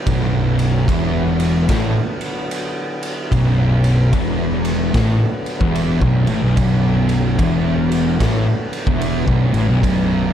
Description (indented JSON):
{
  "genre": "stoner and doom metal",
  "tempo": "74 BPM",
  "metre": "4/4",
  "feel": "swing 64% on 8ths",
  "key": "B minor",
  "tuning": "A4 = 440 Hz",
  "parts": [
    { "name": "overdriven tonewheel organ", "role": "sustained chords", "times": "0.0-10.3 s", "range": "D3 to B3", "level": "-28 LUFS", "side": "equal", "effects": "slow rotary speaker, chorus vibrato" },
    { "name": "thick fuzz guitar", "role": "riff", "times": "0.1-10.3 s", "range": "B1 to A2", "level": "-20 LUFS", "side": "left 8 dB", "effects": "distortion" },
    { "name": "thick fuzz guitar", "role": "riff", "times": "0.1-10.3 s", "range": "B1 to A2", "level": "-19 LUFS", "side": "right 5 dB", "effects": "distortion" },
    { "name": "fuzz picked electric bass", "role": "bass", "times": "0.1-10.3 s", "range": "B0 to A1", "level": "-22 LUFS", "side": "equal", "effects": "overdrive" },
    { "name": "raw garage drum kit", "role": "drums", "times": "0.1-10.1 s", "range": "kick drum, ride cymbal, snare drum", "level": "-23 LUFS", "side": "equal", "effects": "none" }
  ],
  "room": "small room reverb",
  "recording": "dark, warm production",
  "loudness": "-15 LUFS",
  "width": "side -10 dB against mid",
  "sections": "0.0-10.3 A section",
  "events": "none",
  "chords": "0.0 Bm"
}